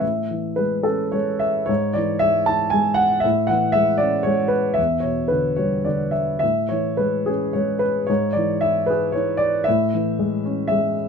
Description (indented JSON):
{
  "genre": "classical, lyrical solo piano",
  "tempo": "104-122 BPM",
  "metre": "3/4",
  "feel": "rubato",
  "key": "A major",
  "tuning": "A4 = 440 Hz",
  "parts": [
    { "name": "dark concert grand piano", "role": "solo", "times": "0.0-11.1 s", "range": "E2 to A5", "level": "-18 LUFS", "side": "equal", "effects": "none" }
  ],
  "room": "light reverb",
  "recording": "close, detailed microphones",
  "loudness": "-18 LUFS",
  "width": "side -6 dB against mid",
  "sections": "0.0-11.1 A section",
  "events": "none",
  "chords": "0.0 Amaj7; 1.7 Dmaj9#11/G#; 3.2 Amaj7; 4.8 Em7; 6.4 Amaj7; 8.1 E7/G#; 9.7 Amaj7"
}